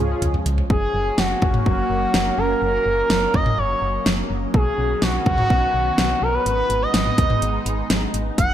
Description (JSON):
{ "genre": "synth-pop", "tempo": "125 BPM", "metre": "4/4", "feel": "straight", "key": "F# major", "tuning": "A4 = 440 Hz", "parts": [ { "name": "lush unison pad", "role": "sustained chords", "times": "0.0-8.5 s", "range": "D#3 to F#4", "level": "-27 LUFS", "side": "right 1 dB", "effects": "chorus, phaser" }, { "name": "solid FM bass", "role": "bass", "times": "0.0-8.5 s", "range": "F#1 to C#2", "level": "-25 LUFS", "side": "equal", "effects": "none" }, { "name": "pop drum kit", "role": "drums", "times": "0.2-8.5 s", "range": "hi-hat, kick drum, snare drum, toms", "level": "-21 LUFS", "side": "equal", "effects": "overdrive, gated reverb" }, { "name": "expressive portamento lead", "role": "melody", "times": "0.7-8.5 s", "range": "F#4 to F#5", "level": "-21 LUFS", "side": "equal", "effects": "chorus, ping-pong delay" } ], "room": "moderate plate reverb, RT60 2.0 s", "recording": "bright 1980s-style digital production", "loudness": "-17 LUFS", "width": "side -11 dB against mid", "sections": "0.7-8.5 A section", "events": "drum fill 0.0-0.7", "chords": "0.0 C#; 0.7 F#; 4.5 Badd9; 6.5 G#m", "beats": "0.22 | 0.70 1.18 1.66 2.14 | 2.62 3.10 3.58 4.06 | 4.54 5.02 5.50 5.98 | 6.46 6.94 7.42 7.90 | 8.38" }